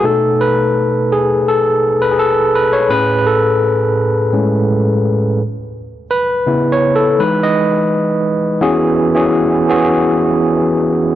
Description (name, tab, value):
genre	soul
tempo	84 BPM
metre	4/4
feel	straight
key	E major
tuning	A4 = 439 Hz
part	overdriven tine electric piano	solo	0.0-11.2 s	A2 to D#5	-12 LUFS	equal	auto-pan
room	moderate echo chamber reverb, RT60 2.3 s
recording	dark, warm production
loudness	-12 LUFS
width	side -12 dB against mid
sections	0.0-8.6 A section; 8.6-11.2 B section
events	tine electric piano solo 0.0-8.6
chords	0.0 B7; 2.9 Amaj7; 5.4 C#m7; 7.2 Emaj7; 8.6 E69